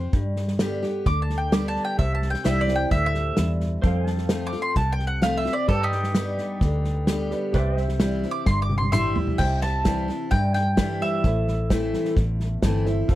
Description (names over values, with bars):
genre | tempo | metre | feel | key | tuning
honky-tonk and classic country | 130 BPM | 4/4 | straight | C major | A4 = 441 Hz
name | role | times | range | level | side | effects
mandolin | melody | 0.0-12.4 s | Eb4 to D6 | -27 LUFS | right 1 dB | none
picked steel-string acoustic guitar | accompaniment | 0.0-13.2 s | E2 to G4 | -28 LUFS | left 2 dB | none
vintage muted fingered electric bass | bass | 0.0-13.2 s | F1 to G2 | -25 LUFS | equal | none
unplugged drum kit | drums | 0.1-13.2 s | crash cymbal, hi-hat, kick drum, snare drum, toms | -24 LUFS | equal | none
warm upright piano | accompaniment | 2.0-13.2 s | E4 to A5 | -35 LUFS | right 3 dB | none
pedal steel guitar | sustained chords | 2.4-9.4 s | B4 to A5 | -36 LUFS | right 3 dB | none
room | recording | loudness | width
light reverb | dry, close 1970s-style studio recording | -21 LUFS | side -15 dB against mid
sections
0.0-9.4 A section; 9.4-13.2 B section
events
mandolin solo 0.0-9.4; drum fill 8.5-9.4; upright piano fill 12.4-13.1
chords
0.1 G; 2.0 C; 3.8 F; 5.7 G; 7.5 C; 11.2 Am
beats
| 0.14 0.60 1.06 1.52 | 1.99 2.45 2.92 3.38 | 3.84 4.30 4.77 5.23 | 5.69 6.16 6.62 7.08 | 7.54 8.01 8.47 8.93 | 9.39 9.86 10.32 10.78 | 11.24 11.70 12.17 12.63 | 13.09